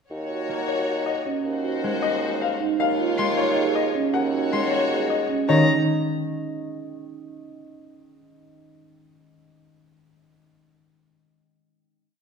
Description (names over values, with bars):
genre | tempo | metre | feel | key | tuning
classical, minimalist pattern music | 312 BPM (eighths) | 7/8 | straight | Eb dorian | A4 = 440 Hz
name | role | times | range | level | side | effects
rich symphonic violin section | sustained chords | 0.1-5.3 s | F4 to Db5 | -30 LUFS | left 3 dB | none
mellow bassoon | bass | 0.1-5.7 s | Eb2 | -27 LUFS | right 1 dB | none
marimba with soft mallets | arpeggios | 0.3-5.7 s | Db4 to Ab4 | -27 LUFS | right 8 dB | none
concert harp | accompaniment | 0.5-5.7 s | Eb3 to Bb3 | -28 LUFS | left 3 dB | none
bright grand piano | melody | 0.7-5.7 s | Db5 to Gb5 | -27 LUFS | left 6 dB | none
rich violin | arpeggios | 3.2-5.7 s | Bb5 to C6 | -28 LUFS | left 3 dB | none
room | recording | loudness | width
wet scoring stage reverb, RT60 1.5 s | minimal, uncompressed stereo recording | -21 LUFS | side -6 dB against mid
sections
0.1-5.5 A section; 5.5-6.8 final chord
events
none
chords
0.1 Ebm7; 1.4 Ab7/Eb; 2.8 Db/Eb; 4.1 Ab7sus4/Eb; 5.5 Eb5